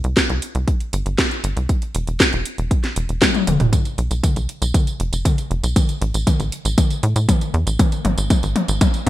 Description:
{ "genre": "italo disco", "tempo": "118 BPM", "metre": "4/4", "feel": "straight", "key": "A minor", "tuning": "A4 = 442 Hz", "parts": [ { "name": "tight sequencer bass", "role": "bass", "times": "0.0-9.1 s", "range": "E1 to A2", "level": "-20 LUFS", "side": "equal", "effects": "tube saturation" }, { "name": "house drum kit", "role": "drums", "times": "0.0-9.1 s", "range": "hi-hat, snare drum, tambourine, toms", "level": "-20 LUFS", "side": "left 1 dB", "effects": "gated reverb" }, { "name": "electronic kick drum", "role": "drums", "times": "0.2-8.9 s", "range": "none", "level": "-18 LUFS", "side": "equal", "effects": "none" } ], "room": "little or no reverb", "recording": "bright 1980s-style digital production", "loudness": "-17 LUFS", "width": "side -14 dB against mid", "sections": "0.0-3.7 A section; 3.7-9.1 B section", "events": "drum fill 3.2-3.7, 3.7-9.1", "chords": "none" }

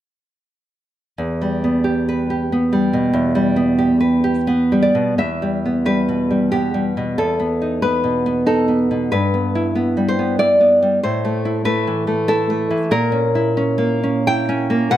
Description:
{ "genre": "romantic piece for solo classical guitar", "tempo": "81-97 BPM", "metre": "3/4", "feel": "rubato", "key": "E minor", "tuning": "A4 = 440 Hz", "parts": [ { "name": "nylon-string guitar", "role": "solo", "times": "1.2-15.0 s", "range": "E2 to G5", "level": "-15 LUFS", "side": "equal", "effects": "none" } ], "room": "moderate recital hall reverb, RT60 1.6 s", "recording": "none", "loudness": "-15 LUFS", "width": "side -12 dB against mid", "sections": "1.2-5.2 A section; 5.2-15.0 B section", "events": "none", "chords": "1.2 Em; 7.2 B7/E; 9.1 Em/G; 11.0 Am; 12.9 A#dim7" }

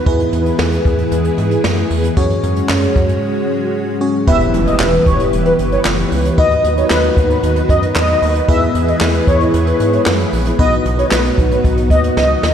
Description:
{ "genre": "synth-pop", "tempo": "114 BPM", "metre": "4/4", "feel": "straight", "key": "unclear", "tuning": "A4 = 440 Hz", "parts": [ { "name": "FM electric piano with soft pad layer", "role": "accompaniment", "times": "0.0-12.5 s", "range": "B3 to C#5", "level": "-19 LUFS", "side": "left 1 dB", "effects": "chorus, phaser" }, { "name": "string machine, cellos", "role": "sustained chords", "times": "0.0-12.5 s", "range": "D#3 to B4", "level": "-19 LUFS", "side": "equal", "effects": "ensemble chorus" }, { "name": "rubbery square bass", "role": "bass", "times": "0.1-12.5 s", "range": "E1 to G#2", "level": "-18 LUFS", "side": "equal", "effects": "none" }, { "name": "jazz brush drum kit", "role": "drums", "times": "0.1-12.5 s", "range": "handclaps, hi-hat, kick drum, snare drum", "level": "-18 LUFS", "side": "equal", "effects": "none" }, { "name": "mellow synth brass", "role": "second line", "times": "4.3-12.5 s", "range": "B4 to E5", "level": "-17 LUFS", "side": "equal", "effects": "chorus, tape echo" }, { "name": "impact", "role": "sound effects", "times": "4.3-6.4 s", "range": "none", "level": "-25 LUFS", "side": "equal", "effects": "none" } ], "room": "wet lush hall reverb, RT60 2.4 s", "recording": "dreamy mix soaked in reverb", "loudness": "-12 LUFS", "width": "side -8 dB against mid", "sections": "0.0-4.3 A section; 4.3-12.5 B section", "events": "break 3.2-4.3; impact 4.3-6.4; drum fill 12.2-12.5", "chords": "0.1 E; 2.2 F#sus2; 4.3 Em; 6.4 B/D#; 8.5 E; 10.6 B" }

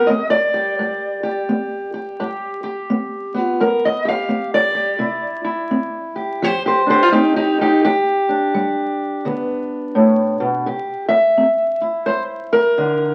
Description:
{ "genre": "acoustic country blues, solo or duo", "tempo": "85 BPM", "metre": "4/4", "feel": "swing 63% on 8ths", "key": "C major", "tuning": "A4 = 443 Hz", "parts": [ { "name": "fingerpicked steel-string acoustic guitar", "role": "solo", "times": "0.0-13.1 s", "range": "G2 to F5", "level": "-18 LUFS", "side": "equal", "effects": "none" } ], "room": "moderate studio reverb, RT60 1.0 s", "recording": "very old 78 rpm record, vinyl crackle", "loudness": "-18 LUFS", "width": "mono", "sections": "0.0-10.7 A section; 10.7-13.1 B section", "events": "steel-string acoustic guitar solo 0.0-10.7", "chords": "0.0 G; 5.0 C; 6.4 F5; 7.8 G; 10.7 C" }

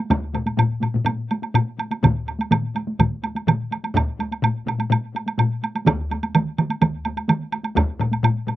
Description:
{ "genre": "japanese traditional, taiko drum ensemble", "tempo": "125 BPM", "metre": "4/4", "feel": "straight", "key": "none", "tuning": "none", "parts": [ { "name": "taiko ensemble", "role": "percussion", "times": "0.1-8.6 s", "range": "none", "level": "-27 LUFS", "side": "equal", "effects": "none" }, { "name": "taiko ensemble", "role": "percussion", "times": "0.1-7.9 s", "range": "none", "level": "-25 LUFS", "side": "equal", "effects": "none" }, { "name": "woodblock", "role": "percussion", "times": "0.1-8.6 s", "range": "none", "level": "-24 LUFS", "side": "right 4 dB", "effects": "none" }, { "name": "taiko ensemble", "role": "percussion", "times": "0.3-8.6 s", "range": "none", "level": "-22 LUFS", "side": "left 3 dB", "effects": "none" }, { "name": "taiko ensemble", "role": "percussion", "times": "2.0-7.4 s", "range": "none", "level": "-20 LUFS", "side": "right 3 dB", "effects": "none" } ], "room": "light reverb", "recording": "recorded outdoors, with no room sound", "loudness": "-20 LUFS", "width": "side -14 dB against mid", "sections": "0.0-8.6 A section", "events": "none", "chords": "none" }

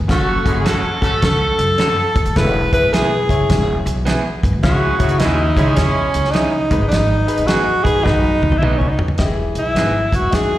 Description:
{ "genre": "uptempo 1960s-style soul", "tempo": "105 BPM", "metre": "4/4", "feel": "swing 64% on 8ths", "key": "E major", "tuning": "A4 = 439 Hz", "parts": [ { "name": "upright bass", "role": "bass", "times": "0.0-10.6 s", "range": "E1 to F#2", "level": "-19 LUFS", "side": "equal", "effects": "tube saturation" }, { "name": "breathy tenor saxophone", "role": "melody", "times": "0.1-10.6 s", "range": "C#4 to B4", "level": "-18 LUFS", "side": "equal", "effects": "slapback echo" }, { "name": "clear horn section", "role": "second line", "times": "0.1-6.1 s", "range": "E3 to A4", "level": "-23 LUFS", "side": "right 2 dB", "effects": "slapback echo" }, { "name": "bright upright piano", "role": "accompaniment", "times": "0.1-10.6 s", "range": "G#2 to D#5", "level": "-24 LUFS", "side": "left 5 dB", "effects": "slapback echo" }, { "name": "warm soul drum kit", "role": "drums", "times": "0.1-10.5 s", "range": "hi-hat, kick drum, snare drum, toms", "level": "-19 LUFS", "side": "equal", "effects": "slapback echo" }, { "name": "electric guitar through a small old amp", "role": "stabs", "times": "0.6-9.9 s", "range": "F#3 to A4", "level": "-23 LUFS", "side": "right 5 dB", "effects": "slapback echo" } ], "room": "light reverb", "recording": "live gig heard through the venue's PA, recital hall reverb", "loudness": "-14 LUFS", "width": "side -14 dB against mid", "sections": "0.0-9.2 A section; 9.2-10.6 B section", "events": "drum fill 8.1-9.2", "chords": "0.1 F#m; 2.4 E; 4.6 C#m; 6.6 G#m; 8.1 B; 9.2 Emaj7" }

